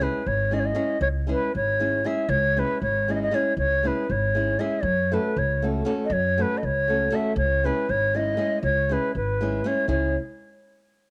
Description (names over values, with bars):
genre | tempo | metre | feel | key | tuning
balkan folk, Balkan wedding band | 236 BPM (eighths) | 5/8 | straight | C# minor | A4 = 436 Hz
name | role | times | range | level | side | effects
breathy ney | melody | 0.0-10.2 s | B4 to E5 | -26 LUFS | equal | none
nylon-string guitar | accompaniment | 0.0-10.2 s | G#3 to A4 | -30 LUFS | equal | none
upright bass | bass | 0.0-10.1 s | G#1 to F#2 | -29 LUFS | equal | none
room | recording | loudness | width
light reverb, small room ambience | home recording on cassette | -24 LUFS | mono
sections
0.0-9.9 A section; 9.9-11.1 B section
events
none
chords
0.0 C#m; 4.8 F#m; 7.4 C#m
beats
0.24 0.49 0.75 | 1.00 1.26 1.52 1.77 2.03 | 2.28 2.54 2.79 3.05 3.30 | 3.56 3.81 4.07 4.32 4.58 | 4.83 5.08 5.34 5.59 5.84 | 6.10 6.35 6.61 6.86 7.11 | 7.37 7.62 7.87 8.12 8.38 | 8.63 8.88 9.13 9.39 9.64 | 9.89 10.14